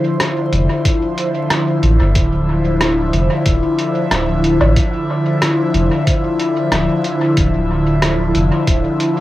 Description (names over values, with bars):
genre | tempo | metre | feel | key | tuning
ambient dub | 92 BPM | 4/4 | straight | D minor | A4 = 441 Hz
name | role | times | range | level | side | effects
airy breathy pad | sustained chords | 0.0-9.2 s | D3 to C5 | -16 LUFS | equal | chorus, phaser
lo-fi sampler-style drum kit | drums | 0.2-9.1 s | hi-hat, rim click, woodblock | -21 LUFS | equal | cassette tape, dub echo
warm sub bass | bass | 0.5-8.8 s | D1 to A1 | -17 LUFS | equal | transformer saturation
electronic kick drum | drums | 0.8-8.8 s | none | -16 LUFS | equal | cassette tape
room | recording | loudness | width
moderate studio ambience, RT60 0.5 s | home recording on cassette, vinyl crackle | -13 LUFS | side -15 dB against mid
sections
0.0-9.2 A section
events
none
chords
0.0 Dm9